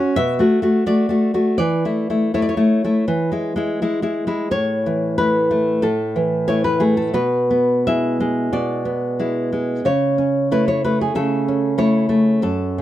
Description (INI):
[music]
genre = romantic piece for solo classical guitar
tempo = 78-96 BPM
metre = 4/4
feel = rubato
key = A major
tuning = A4 = 441 Hz
[part]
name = nylon-string guitar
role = solo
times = 0.0-12.8 s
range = F#2 to F#5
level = -16 LUFS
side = equal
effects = none
[sound]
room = light reverb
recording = none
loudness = -16 LUFS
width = side -13 dB against mid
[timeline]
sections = 0.0-4.5 A section; 4.5-12.8 B section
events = none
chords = 0.2 Bm7; 1.6 A5/E; 3.0 E; 4.5 A; 7.2 E7/B; 9.9 A/C#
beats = 0.19 0.87 | 1.59 2.32 3.04 3.77 | 4.49 5.17 5.84 6.50 | 7.16 7.89 8.55 9.20 | 9.85 10.50 11.14 11.78 | 12.41